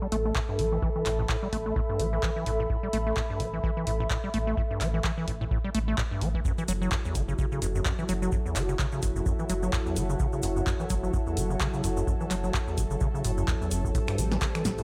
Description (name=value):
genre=acid house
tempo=128 BPM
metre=4/4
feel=swing 57% on 16ths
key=F# phrygian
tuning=A4 = 438 Hz
part: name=acid bass, square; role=riff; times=0.0-14.8 s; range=E2 to A3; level=-34 LUFS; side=equal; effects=tube saturation, sidechain pumping, analog delay
part: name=warbly tape-like pad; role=texture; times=0.0-14.8 s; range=F#4 to B5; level=-37 LUFS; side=equal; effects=chorus, built-in reverb, sidechain pumping
part: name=warm sub bass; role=bass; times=0.1-14.8 s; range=F#1 to A1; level=-34 LUFS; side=equal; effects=sidechain pumping
part: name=punchy analog drum machine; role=drums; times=0.1-14.8 s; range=finger snaps, handclaps, hi-hat, snare drum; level=-37 LUFS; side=equal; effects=overdrive, small room ambience
part: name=electronic kick drum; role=drums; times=0.4-14.8 s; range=none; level=-33 LUFS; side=equal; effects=small room ambience
part: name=lush unison pad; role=sustained chords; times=6.4-14.8 s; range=F#3 to A4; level=-37 LUFS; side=equal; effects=chorus, sidechain pumping
part: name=cabasa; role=percussion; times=6.5-14.8 s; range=none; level=-44 LUFS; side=equal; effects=none
room=moderate echo chamber reverb, RT60 1.4 s, digital ambience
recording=echo-heavy mix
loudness=-28 LUFS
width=mono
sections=0.0-14.8 A section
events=filter sweep on acid bass 0.0-14.8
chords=0.0 A5; 6.5 F#m7; 13.9 Am7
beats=0.36 | 0.82 1.29 1.76 2.23 | 2.70 3.17 3.64 4.11 | 4.58 5.04 5.51 5.98 | 6.45 6.92 7.39 7.86 | 8.32 8.79 9.26 9.73 | 10.20 10.67 11.14 11.61 | 12.07 12.54 13.01 13.48 | 13.95 14.42